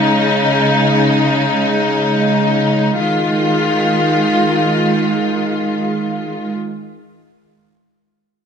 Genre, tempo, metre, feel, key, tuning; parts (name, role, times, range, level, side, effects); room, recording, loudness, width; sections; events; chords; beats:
trip hop; free time; F minor; A4 = 444 Hz
rich symphonic string section; sustained chords; 0.0-6.5 s; Db3 to F4; -13 LUFS; equal
moderate echo chamber reverb, RT60 2.0 s; -13 LUFS; side -7 dB against mid
0.0-3.0 A section; 3.0-6.3 B section
0.0 Eb7sus4; 3.0 Fm7
free time